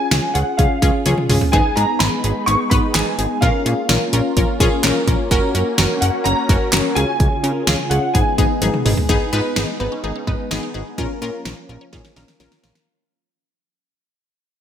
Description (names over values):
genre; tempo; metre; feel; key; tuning
synth-pop; 127 BPM; 4/4; straight; G# dorian; A4 = 440 Hz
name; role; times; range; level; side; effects
warm baby grand piano; melody; 0.0-8.8 s; E#5 to C#6; -22 LUFS; equal; ensemble chorus, digital delay
analog pluck; accompaniment; 0.0-12.8 s; B3 to C#5; -21 LUFS; left 2 dB; chorus
fat analog bass; bass; 0.1-12.7 s; F#1 to C#3; -20 LUFS; equal; none
pop drum kit; drums; 0.1-12.9 s; handclaps, hi-hat, kick drum, snare drum, toms; -19 LUFS; right 1 dB; gated reverb
sweeping resonant pad; sustained chords; 1.5-12.9 s; C#3 to G#4; -27 LUFS; equal; chorus
resonant blip pluck; arpeggios; 9.1-12.8 s; C#4 to F#4; -34 LUFS; right 1 dB; phaser, digital delay
room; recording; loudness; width
moderate plate reverb, RT60 1.7 s; bright 1980s-style digital production; -15 LUFS; side -9 dB against mid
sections
0.0-9.1 A section; 9.1-12.9 B section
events
drum fill 1.1-1.5, 8.6-9.1, 11.9-12.9; fade-out 9.1-12.9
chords
0.0 C#; 1.5 G#m; 3.4 A#m; 5.3 F#; 7.0 C#; 8.1 G#m; 11.0 A#m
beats
0.11 0.59 1.06 | 1.53 2.00 2.48 2.95 | 3.42 3.89 4.37 4.84 | 5.31 5.78 6.26 6.73 | 7.20 7.67 8.15 8.62 | 9.09 9.56 10.04 10.51 | 10.98 11.45 11.93 12.40